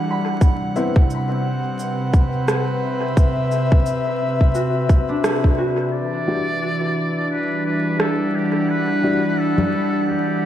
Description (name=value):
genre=ambient dub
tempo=87 BPM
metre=4/4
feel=swing 59% on 16ths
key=E minor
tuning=A4 = 439 Hz
part: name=airy breathy pad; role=sustained chords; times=0.0-10.5 s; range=C3 to F#5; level=-20 LUFS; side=equal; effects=chorus
part: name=Celtic harp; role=arpeggios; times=0.0-8.0 s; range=D4 to B5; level=-28 LUFS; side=left 1 dB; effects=ping-pong delay
part: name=electronic cabasa, rim click and congas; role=drums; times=0.4-9.7 s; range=none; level=-25 LUFS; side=equal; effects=overdrive, dub echo
part: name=electronic kick drum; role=drums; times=0.4-5.6 s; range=none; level=-15 LUFS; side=equal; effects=overdrive
part: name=warm upright piano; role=stabs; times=0.8-0.9, 6.3-9.2 s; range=G3 to F#4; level=-27 LUFS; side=left 2 dB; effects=vintage 12-bit sampler grit, low-pass filter, dub echo
part: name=trumpet with metal mute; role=melody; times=5.9-10.5 s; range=G4 to D5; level=-25 LUFS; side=equal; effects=dub echo
room=wet church reverb, RT60 3.0 s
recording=dreamy mix soaked in reverb, vinyl crackle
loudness=-17 LUFS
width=side -11 dB against mid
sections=0.0-5.9 A section; 5.9-10.5 B section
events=band accent 5.2-5.6; filter sweep on upright piano 5.9-10.5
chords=0.4 Cmaj7; 5.9 Em9